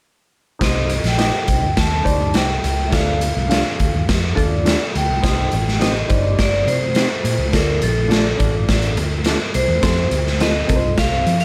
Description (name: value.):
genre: uptempo 1960s-style soul.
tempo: 104 BPM.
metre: 4/4.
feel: straight.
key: C dorian.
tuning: A4 = 436 Hz.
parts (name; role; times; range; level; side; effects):
vibraphone with hard mallets; melody; 0.6-11.4 s; A4 to A5; -25 LUFS; equal; none.
barky reed electric piano; accompaniment; 0.6-11.3 s; C3 to F5; -27 LUFS; equal; overdrive, phaser.
vintage muted fingered electric bass; bass; 0.6-11.4 s; G1 to F3; -23 LUFS; equal; none.
raw garage drum kit; drums; 0.6-11.4 s; hi-hat, kick drum, snare drum; -21 LUFS; equal; none.
mellow electric guitar; stabs; 1.2-10.5 s; A3 to Eb5; -26 LUFS; equal; none.
room: light reverb.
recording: none.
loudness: -18 LUFS.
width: mono.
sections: 0.6-5.2 A section; 5.2-11.4 B section.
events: none.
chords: 0.6 Cm; 2.9 Dm; 5.2 Cm; 7.5 Dm; 9.8 F.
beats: | 0.61 1.19 1.77 2.35 | 2.93 3.50 4.08 4.66 | 5.23 5.81 6.38 6.96 | 7.54 8.11 8.68 9.26 | 9.83 10.40 10.98.